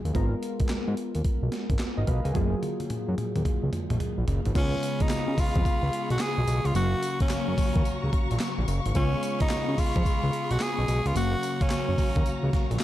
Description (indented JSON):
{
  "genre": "R&B, new jack swing",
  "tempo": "109 BPM",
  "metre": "4/4",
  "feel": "swing 64% on 16ths",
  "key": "unclear",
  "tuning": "A4 = 440 Hz",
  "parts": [
    { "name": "warm analog keys", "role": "accompaniment", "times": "0.0-12.8 s", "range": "C#3 to G#5", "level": "-32 LUFS", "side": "left 1 dB", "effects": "chorus" },
    { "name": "fat analog bass", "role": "bass", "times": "0.1-12.8 s", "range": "F#1 to C#3", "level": "-27 LUFS", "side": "equal", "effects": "none" },
    { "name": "breakbeat sampler-style drum kit", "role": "drums", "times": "0.1-12.8 s", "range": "crash cymbal, handclaps, hi-hat, kick drum, snare drum, tambourine, toms", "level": "-28 LUFS", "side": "equal", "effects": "none" },
    { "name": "warm studio string section", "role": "sustained chords", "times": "4.5-12.8 s", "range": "F#4 to C#6", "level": "-36 LUFS", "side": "left 1 dB", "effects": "none" },
    { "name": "raspy tenor saxophone", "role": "melody", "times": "4.6-12.7 s", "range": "C#4 to G#4", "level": "-30 LUFS", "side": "equal", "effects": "none" }
  ],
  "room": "light reverb, digital ambience",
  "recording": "dark, warm production",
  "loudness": "-24 LUFS",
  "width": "side -14 dB against mid",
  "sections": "0.0-4.6 A section; 4.6-12.8 B section",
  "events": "drum fill 2.4-4.6",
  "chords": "0.1 G#m69; 2.4 F#maj9; 4.6 C#7; 6.8 F#maj7; 9.0 C#7; 11.2 F#maj7",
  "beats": "| 0.15 0.70 1.25 1.80 | 2.35 2.90 3.45 4.00 | 4.55 5.10 5.65 6.20 | 6.75 7.30 7.86 8.41 | 8.96 9.51 10.06 10.61 | 11.16 11.71 12.26 12.81"
}